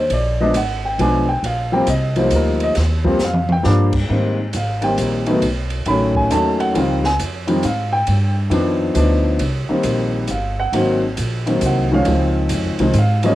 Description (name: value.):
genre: jazz piano trio.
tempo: 136 BPM.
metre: 3/4.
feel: swing 66% on 8ths.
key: Eb major, Ab major from 4.1 s.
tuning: A4 = 445 Hz.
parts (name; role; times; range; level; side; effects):
warm upright piano; melody; 0.0-13.3 s; Eb3 to B5; -17 LUFS; left 1 dB; none.
upright bass; bass; 0.0-13.3 s; G1 to Ab2; -20 LUFS; equal; none.
open jazz drum kit; drums; 0.1-13.3 s; crash cymbal, hi-hat, kick drum, ride cymbal, snare drum, toms; -26 LUFS; right 2 dB; cassette tape.
room: wet booth ambience, RT60 0.3 s.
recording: home recording on cassette.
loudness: -15 LUFS.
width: side -15 dB against mid.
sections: 0.0-4.1 A section; 4.1-13.3 A section.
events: upright piano solo 0.0-13.3; drum fill 3.2-3.6.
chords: 0.1 Bb7b9; 1.4 Eb69; 4.1 Abmaj9; 5.4 B9; 6.7 Dbmaj9#11; 8.1 G7b13; 9.4 Cm7; 10.7 Ab9; 12.1 Dbmaj7.